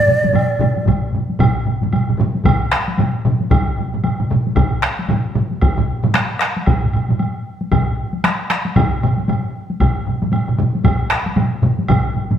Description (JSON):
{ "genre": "japanese traditional, taiko drum ensemble", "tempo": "114 BPM", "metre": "4/4", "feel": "swing 60% on 16ths", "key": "unclear", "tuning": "A4 = 440 Hz", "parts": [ { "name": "breathy mellow shakuhachi", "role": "melody", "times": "0.0-0.8 s", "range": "D5", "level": "-16 LUFS", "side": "right 1 dB", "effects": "none" }, { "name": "solo taiko drums", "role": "percussion", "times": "0.1-12.4 s", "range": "none", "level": "-23 LUFS", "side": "left 3 dB", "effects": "none" }, { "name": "taiko ensemble", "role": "percussion", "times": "0.1-12.4 s", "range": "none", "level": "-20 LUFS", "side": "equal", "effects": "none" }, { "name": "taiko ensemble", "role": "percussion", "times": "0.1-12.4 s", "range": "none", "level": "-20 LUFS", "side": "right 2 dB", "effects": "none" }, { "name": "woodblock", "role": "percussion", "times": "0.4-12.0 s", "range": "none", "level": "-27 LUFS", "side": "right 3 dB", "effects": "none" }, { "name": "taiko ensemble", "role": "percussion", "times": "0.9-12.0 s", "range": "none", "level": "-19 LUFS", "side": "left 1 dB", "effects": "none" } ], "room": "wet large studio reverb, RT60 1.2 s", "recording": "band playing live in one room", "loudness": "-15 LUFS", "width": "side -9 dB against mid", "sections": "0.0-1.4 A section; 1.4-12.4 B section", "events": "none", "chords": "none" }